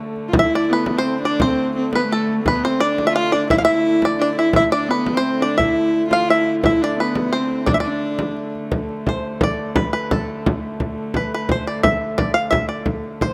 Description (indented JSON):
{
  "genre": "medieval dance",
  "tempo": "172 BPM",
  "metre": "3/4",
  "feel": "straight",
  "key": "D dorian",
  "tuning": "A4 = 441 Hz",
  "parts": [
    { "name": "bluegrass banjo", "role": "melody", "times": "0.0-13.3 s", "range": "A4 to F5", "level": "-23 LUFS", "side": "equal", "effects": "none" },
    { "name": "warm hurdy-gurdy", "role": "drone", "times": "0.0-13.3 s", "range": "D3 to A3", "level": "-30 LUFS", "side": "equal", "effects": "none" },
    { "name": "frame drum", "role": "percussion", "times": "0.2-13.3 s", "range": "none", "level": "-24 LUFS", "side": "equal", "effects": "none" },
    { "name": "clear viola da gamba", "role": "second line", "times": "0.3-8.5 s", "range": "A3 to F4", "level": "-22 LUFS", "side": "equal", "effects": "none" }
  ],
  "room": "moderate plate reverb, RT60 2.8 s",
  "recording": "rough home demo mix",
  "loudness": "-19 LUFS",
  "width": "mono",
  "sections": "0.3-8.7 A section; 8.7-13.3 B section",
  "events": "none",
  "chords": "none"
}